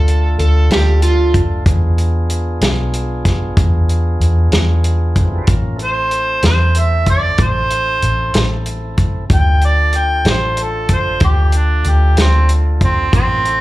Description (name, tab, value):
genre	slow blues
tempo	63 BPM (dotted quarters)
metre	12/8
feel	straight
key	A minor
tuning	A4 = 442 Hz
part	overdriven slide guitar	second line	0.0-1.3 s	F4 to A4	-19 LUFS	right 2 dB	slapback echo
part	tonewheel organ	sustained chords	0.0-13.6 s	C#3 to D5	-26 LUFS	right 1 dB	stopped rotary speaker
part	vintage muted fingered electric bass	bass	0.0-13.6 s	A1 to E2	-14 LUFS	equal	none
part	warm soul drum kit	drums	0.1-13.6 s	hi-hat, kick drum, snare drum	-16 LUFS	equal	none
part	mellow harmonica	melody	5.8-13.6 s	C4 to G5	-16 LUFS	right 1 dB	overdrive, slapback echo
room	studio reverb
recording	live gig heard through the venue's PA, club reverb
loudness	-12 LUFS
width	side -17 dB against mid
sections	0.0-5.5 A section; 5.5-13.6 B section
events	harmonica solo 5.5-13.6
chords	0.0 Dm; 1.7 E7b9; 5.5 Am; 9.3 Dm